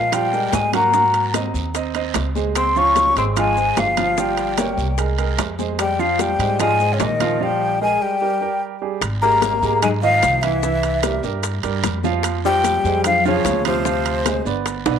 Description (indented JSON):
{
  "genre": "Afro-Cuban jazz",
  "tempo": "149 BPM",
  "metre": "4/4",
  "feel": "straight",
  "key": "F minor, Ab major from 9.0 s",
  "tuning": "A4 = 440 Hz",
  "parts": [
    { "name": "breathy hollow jazz flute", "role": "melody", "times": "0.0-14.4 s", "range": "C5 to Db6", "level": "-19 LUFS", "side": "left 2 dB", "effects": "none" },
    { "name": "growling tenor saxophone", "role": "second line", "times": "0.0-14.4 s", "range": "C3 to Db4", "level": "-25 LUFS", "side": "left 9 dB", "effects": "none" },
    { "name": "warm baby grand piano", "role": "accompaniment", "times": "0.0-15.0 s", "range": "Eb3 to Gb5", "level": "-24 LUFS", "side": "right 12 dB", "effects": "none" },
    { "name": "upright bass", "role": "bass", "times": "0.0-15.0 s", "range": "G1 to Bb2", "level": "-25 LUFS", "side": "equal", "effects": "none" },
    { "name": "bongos", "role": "percussion", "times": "0.1-15.0 s", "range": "none", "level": "-29 LUFS", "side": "left 13 dB", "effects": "none" },
    { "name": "congas", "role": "percussion", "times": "0.1-15.0 s", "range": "none", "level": "-30 LUFS", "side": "left 12 dB", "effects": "none" },
    { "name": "guiro", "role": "percussion", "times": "0.1-15.0 s", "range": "none", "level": "-36 LUFS", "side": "right 13 dB", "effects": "none" },
    { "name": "maracas", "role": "percussion", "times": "0.1-15.0 s", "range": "none", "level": "-34 LUFS", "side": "left 16 dB", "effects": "none" },
    { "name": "timbales", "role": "percussion", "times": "0.1-15.0 s", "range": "none", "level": "-26 LUFS", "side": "right 12 dB", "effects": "none" }
  ],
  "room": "wet spring reverb, RT60 1.7 s, small room ambience",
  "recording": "1960s-style stereo with parts hard left and right",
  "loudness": "-16 LUFS",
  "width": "side -8 dB against mid",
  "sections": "0.0-9.0 A section; 9.0-15.0 B section",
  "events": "break 7.4-9.0",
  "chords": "0.0 Bb5; 0.9 Ab9; 2.6 Dbmaj7; 4.2 Gm7b5; 5.0 Fmadd11/C; 5.8 Fm9; 7.4 Bb5; 8.2 Gm; 9.0 Abmaj7; 10.6 C7; 12.2 Fm; 13.9 Dm7b5",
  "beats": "0.13 0.53 | 0.94 1.34 1.75 2.15 | 2.56 2.96 3.37 3.77 | 4.17 4.58 4.98 5.38 | 5.79 6.19 6.60 7.00 | 7.40 7.81 8.21 8.62 | 9.02 9.42 9.82 10.23 | 10.63 11.03 11.44 11.84 | 12.24 12.64 13.05 13.45 | 13.85 14.26 14.66"
}